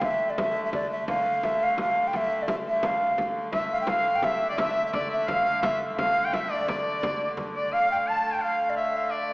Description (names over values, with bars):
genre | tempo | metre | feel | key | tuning
medieval dance | 172 BPM | 3/4 | straight | D minor | A4 = 441 Hz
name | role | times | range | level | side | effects
wooden flute | melody | 0.0-9.3 s | D5 to A5 | -25 LUFS | equal | none
rich hurdy-gurdy | drone | 0.0-9.3 s | D3 to A3 | -35 LUFS | equal | none
frame drum | percussion | 0.0-7.5 s | none | -34 LUFS | equal | none
bright shawm | second line | 3.5-9.3 s | D5 to A5 | -28 LUFS | left 1 dB | none
room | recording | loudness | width
wet recital hall reverb, RT60 1.7 s | heard from further back in the room, small speaker sound | -23 LUFS | side -24 dB against mid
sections
0.0-7.7 A section; 7.7-9.3 B section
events
none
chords
none